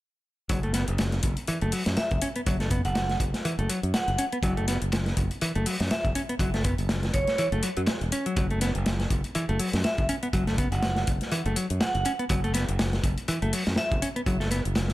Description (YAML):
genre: breakbeat, breaks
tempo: 122 BPM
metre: 4/4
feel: swing 57% on 16ths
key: F# minor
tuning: A4 = 440 Hz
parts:
  - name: modern bright picked electric bass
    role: riff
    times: 0.5-14.6 s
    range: E3 to C#4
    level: -31 LUFS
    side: equal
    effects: low-pass filter, digital delay
  - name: modern bright fingered electric bass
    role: bass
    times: 0.5-14.9 s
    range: E1 to F#2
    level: -28 LUFS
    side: equal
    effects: none
  - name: crunchy breakbeat drum kit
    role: drums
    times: 0.5-14.9 s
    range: hi-hat, kick drum, snare drum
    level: -28 LUFS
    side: equal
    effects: none
  - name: electronic hi-hat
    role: drums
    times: 0.5-14.9 s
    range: none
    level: -37 LUFS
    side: left 6 dB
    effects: overdrive
  - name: vibraphone with hard mallets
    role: melody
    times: 2.0-14.0 s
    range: C#5 to F#5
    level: -32 LUFS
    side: right 1 dB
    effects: small speaker sound, vintage 12-bit sampler grit, digital delay
room: studio ambience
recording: none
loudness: -24 LUFS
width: side -16 dB against mid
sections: 0.5-14.9 A section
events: none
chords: none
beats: | 0.50 0.99 1.48 1.97 | 2.47 2.96 3.45 3.94 | 4.43 4.92 5.42 5.91 | 6.40 6.89 7.38 7.88 | 8.37 8.86 9.35 9.84 | 10.34 10.83 11.32 11.81 | 12.30 12.79 13.29 13.78 | 14.27 14.76